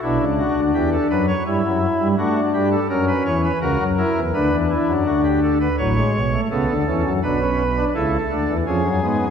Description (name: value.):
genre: classical, baroque-style 3-part fugue for pipe organ.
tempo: 83 BPM.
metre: 4/4.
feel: straight.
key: B minor.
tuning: A4 = 443 Hz.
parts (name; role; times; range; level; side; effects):
pipe organ, cornet; solo; 0.0-9.3 s; A1 to C#5; -17 LUFS; equal; none.
room: wet scoring stage reverb, RT60 1.6 s.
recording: heard from further back in the room.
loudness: -17 LUFS.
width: side -7 dB against mid.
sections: 0.0-9.3 A section.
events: none.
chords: 0.0 Bm; 1.5 Em; 2.9 F#7; 4.3 Bm/D; 5.8 F#m/A; 7.2 Bm; 8.7 C#7/E#.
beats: | 0.03 0.74 1.46 2.18 | 2.90 3.62 4.34 5.06 | 5.79 6.51 7.23 7.95 | 8.67.